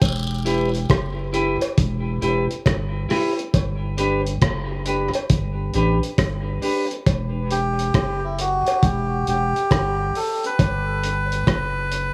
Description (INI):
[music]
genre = dub reggae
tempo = 68 BPM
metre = 4/4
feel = swing 63% on 16ths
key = E minor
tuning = A4 = 445 Hz
[part]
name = soft dub sub bass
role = bass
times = 0.0-12.1 s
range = E1 to A1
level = -27 LUFS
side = equal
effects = none
[part]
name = cloth-damped thuddy drum kit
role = drums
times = 0.0-12.1 s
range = hi-hat, kick drum, rim click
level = -24 LUFS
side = equal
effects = none
[part]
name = cowbell and jawbone-type rattle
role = percussion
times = 0.0-11.7 s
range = none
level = -34 LUFS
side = equal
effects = tape echo
[part]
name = clean electric guitar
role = accompaniment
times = 0.5-6.9 s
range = D4 to B4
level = -27 LUFS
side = equal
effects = tape echo
[part]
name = melodica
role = melody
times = 7.5-12.1 s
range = E4 to B4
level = -26 LUFS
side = equal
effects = tape echo
[sound]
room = light reverb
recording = echo-heavy mix, small room ambience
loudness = -22 LUFS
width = mono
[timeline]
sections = 0.0-12.1 A section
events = none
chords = 0.0 Em; 3.5 G; 7.1 Em; 10.6 G